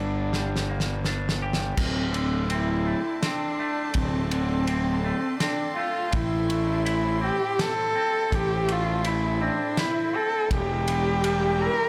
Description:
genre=post-rock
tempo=82 BPM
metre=3/4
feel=straight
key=unclear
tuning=A4 = 442 Hz
part: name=dark cello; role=melody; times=0.0-11.9 s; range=C4 to Bb4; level=-29 LUFS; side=equal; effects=slapback echo
part: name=semi-hollow electric guitar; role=arpeggios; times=0.0-11.9 s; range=D2 to G4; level=-34 LUFS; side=equal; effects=slapback echo
part: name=fuzz fingered electric bass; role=bass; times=0.0-11.7 s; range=D1 to A1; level=-30 LUFS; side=equal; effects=overdrive
part: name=loose indie drum kit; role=drums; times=0.3-11.4 s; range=crash cymbal, kick drum, ride cymbal, snare drum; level=-34 LUFS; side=equal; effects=none
part: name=clear studio string section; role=sustained chords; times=1.8-11.9 s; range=Bb3 to C6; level=-41 LUFS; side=equal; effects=none
room=light reverb, studio ambience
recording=none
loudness=-25 LUFS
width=mono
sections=0.0-1.8 A section; 1.8-11.9 B section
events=drum fill 0.3-1.8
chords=0.0 Gm; 1.8 D5; 6.1 Am; 10.5 Edim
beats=0.32 1.04 | 1.77 2.50 3.23 | 3.96 4.68 5.41 | 6.14 6.86 7.59 | 8.32 9.05 9.78 | 10.51 11.24

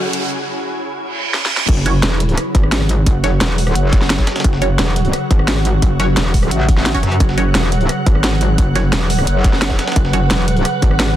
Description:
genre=dark technical drum and bass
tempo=174 BPM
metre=4/4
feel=straight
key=unclear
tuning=A4 = 441 Hz
part: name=swarming drone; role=sustained chords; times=0.0-11.2 s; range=C#3 to B4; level=-23 LUFS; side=equal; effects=built-in reverb, sidechain pumping
part: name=riser and reverse cymbal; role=sound effects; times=0.0-1.7 s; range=none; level=-23 LUFS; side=right 5 dB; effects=none
part: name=ethereal airy pad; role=texture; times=0.0-11.2 s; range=C#4 to F#5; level=-26 LUFS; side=right 2 dB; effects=ensemble chorus, built-in reverb, sidechain pumping
part: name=drum and bass drum kit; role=drums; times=0.1-11.2 s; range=crash cymbal, hi-hat, rim click, snare drum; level=-20 LUFS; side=equal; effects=overdrive
part: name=metallic wobble bass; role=bass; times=1.7-11.2 s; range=F#1 to G#1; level=-16 LUFS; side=equal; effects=chorus, overdrive
part: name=breakbeat sampler-style drum kit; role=drums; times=1.7-11.1 s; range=hi-hat, snare drum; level=-27 LUFS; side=equal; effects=none
part: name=electronic kick drum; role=drums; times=1.7-10.9 s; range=none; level=-14 LUFS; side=equal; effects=none
part: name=filtered dub chord stab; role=stabs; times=1.9-10.2 s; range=C#4 to C#5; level=-25 LUFS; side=right 3 dB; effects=phaser, tape echo
part: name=metallic wobble bass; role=bass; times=2.0-10.6 s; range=E1 to F#2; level=-16 LUFS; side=equal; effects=chorus
room=digital ambience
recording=dense, heavily limited modern master, high-pass filter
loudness=-13 LUFS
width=side -12 dB against mid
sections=0.0-1.7 A section; 1.7-11.2 B section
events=build-up 0.0-1.7; riser 0.0-0.3; filter sweep 0.0-1.7; break 0.3-1.7; reverse cymbal 1.1-1.7; drum fill 1.3-1.7; drop 1.7-11.2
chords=0.0 F#5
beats=| 0.31 0.65 1.00 1.34 | 1.69 2.03 2.38 2.72 | 3.06 3.41 3.75 4.10 | 4.44 4.79 5.13 5.48 | 5.82 6.17 6.51 6.86 | 7.20 7.55 7.89 8.24 | 8.58 8.93 9.27 9.62 | 9.96 10.31 10.65 11.00

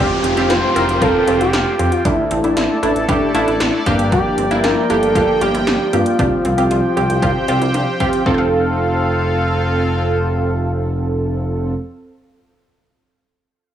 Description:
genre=synth-pop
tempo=116 BPM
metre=4/4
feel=straight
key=F major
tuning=A4 = 440 Hz
part: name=expressive synth lead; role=melody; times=0.0-7.7 s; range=E4 to C5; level=-19 LUFS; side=left 1 dB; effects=chorus
part: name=funky polysynth comp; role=accompaniment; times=0.0-11.7 s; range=A3 to Bb4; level=-19 LUFS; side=right 1 dB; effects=chorus
part: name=sweeping resonant pad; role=sustained chords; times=0.0-11.7 s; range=F3 to A5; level=-22 LUFS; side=equal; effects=chorus
part: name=wide unison pluck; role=arpeggios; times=0.0-11.9 s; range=C4 to F5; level=-27 LUFS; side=right 1 dB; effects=none
part: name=smooth synth bass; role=bass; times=0.0-11.7 s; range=F1 to C3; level=-21 LUFS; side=equal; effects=none
part: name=downlifter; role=sound effects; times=0.0-4.1 s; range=none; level=-26 LUFS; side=equal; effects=none
part: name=80s electronic pad drums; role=drums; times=0.2-8.4 s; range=hi-hat, kick drum, snare drum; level=-22 LUFS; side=equal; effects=none
room=light reverb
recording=dry, gritty hardware recording, cassette tape, small room ambience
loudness=-14 LUFS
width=side -10 dB against mid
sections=0.0-8.3 A section; 8.3-12.4 B section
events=none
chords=0.0 Fsus2; 2.1 Asus4; 3.9 Gm7; 6.2 Csus4; 8.3 F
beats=0.50 1.02 1.54 | 2.05 2.57 3.09 3.60 | 4.12 4.64 5.16 5.67 | 6.19 6.71 7.22 7.74 | 8.26 8.78 9.29 9.81 | 10.33 10.85 11.36

